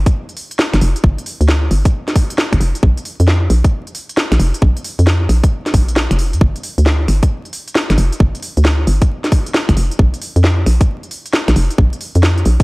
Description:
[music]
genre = UK garage, two-step garage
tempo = 134 BPM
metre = 4/4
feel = swing 65% on 16ths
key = G minor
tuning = A4 = 441 Hz
[part]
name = hollow knocking FM bass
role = bass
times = 0.0-12.6 s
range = F1 to F2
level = -12 LUFS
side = equal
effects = none
[part]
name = electronic kick drum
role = drums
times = 0.1-12.6 s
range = none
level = -13 LUFS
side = equal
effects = none
[part]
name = garage drum kit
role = drums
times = 0.1-12.6 s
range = finger snaps, hi-hat, snare drum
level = -19 LUFS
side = equal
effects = none
[sound]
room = little or no reverb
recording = dry, gritty hardware recording, vinyl crackle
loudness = -12 LUFS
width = side -25 dB against mid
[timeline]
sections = 0.0-12.6 A section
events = kick drops out 6.0-6.4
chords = none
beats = 0.14 0.59 | 1.04 1.49 1.93 2.38 | 2.83 3.28 3.73 4.17 | 4.62 5.07 5.52 5.96 | 6.41 6.86 7.31 7.75 | 8.20 8.65 9.10 9.55 | 9.99 10.44 10.89 11.34 | 11.78 12.23

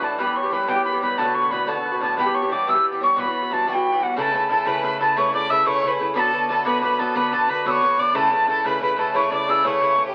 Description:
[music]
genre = celtic folk, Celtic jig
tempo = 121 BPM (dotted quarters)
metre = 6/8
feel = straight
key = unclear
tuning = A4 = 440 Hz
[part]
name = wooden whistle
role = melody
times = 0.0-10.0 s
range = F#5 to E6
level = -23 LUFS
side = equal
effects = none
[part]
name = hammered dulcimer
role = second line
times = 0.0-10.1 s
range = F#4 to E5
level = -29 LUFS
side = equal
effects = none
[part]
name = Irish bouzouki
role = accompaniment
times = 0.0-10.1 s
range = G2 to B4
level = -27 LUFS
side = equal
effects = none
[part]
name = clear fiddle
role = second line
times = 4.2-10.1 s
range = G4 to E5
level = -29 LUFS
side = equal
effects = none
[sound]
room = moderate studio reverb, RT60 0.7 s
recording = very old 78 rpm record, vinyl crackle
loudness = -21 LUFS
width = mono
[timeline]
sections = 0.0-4.2 A section; 4.2-10.1 B section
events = none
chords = 0.2 Em; 1.2 Bm7; 2.2 Em; 3.2 Emadd9; 4.2 Aadd9; 6.2 Bm; 8.2 Aadd9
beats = | 0.18 0.68 | 1.18 1.68 | 2.18 2.68 | 3.17 3.67 | 4.17 4.67 | 5.17 5.66 | 6.16 6.66 | 7.16 7.65 | 8.15 8.65 | 9.14 9.64 | 10.14

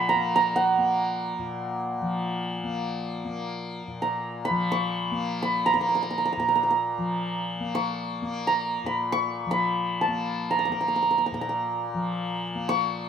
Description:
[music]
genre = indian classical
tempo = free time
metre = none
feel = none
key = Bb raga todi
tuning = A4 = 441 Hz
[part]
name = santur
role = melody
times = 0.0-13.1 s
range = Gb5 to Db6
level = -25 LUFS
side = right 2 dB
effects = plate reverb
[part]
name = tanpura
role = drone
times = 0.0-13.1 s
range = Bb2 to Bb3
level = -30 LUFS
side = left 3 dB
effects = none
[sound]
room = moderate studio reverb, RT60 0.6 s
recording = close, detailed microphones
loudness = -24 LUFS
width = side -8 dB against mid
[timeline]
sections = 0.0-13.1 A section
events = none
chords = none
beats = free time

